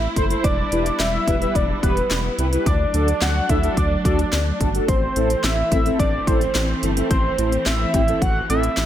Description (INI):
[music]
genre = synth-pop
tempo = 108 BPM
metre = 4/4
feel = straight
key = A dorian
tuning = A4 = 443 Hz
[part]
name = fat analog lead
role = melody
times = 0.0-8.9 s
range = B4 to F#5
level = -23 LUFS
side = equal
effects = chorus, digital delay
[part]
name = warm studio string section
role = sustained chords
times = 0.0-8.9 s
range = E3 to E4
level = -28 LUFS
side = right 1 dB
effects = none
[part]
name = round analog bass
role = bass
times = 0.0-8.9 s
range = E1 to D2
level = -23 LUFS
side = equal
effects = none
[part]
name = mellow synth brass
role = accompaniment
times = 0.2-8.6 s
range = C4 to C5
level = -25 LUFS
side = equal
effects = chorus
[part]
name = house drum kit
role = drums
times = 0.2-8.9 s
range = handclaps, hi-hat, kick drum, snare drum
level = -22 LUFS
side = equal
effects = none
[sound]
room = light reverb, digital ambience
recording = none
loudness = -17 LUFS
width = side -11 dB against mid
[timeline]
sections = 0.0-8.9 A section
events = none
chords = 0.4 Em; 2.7 D; 4.9 Am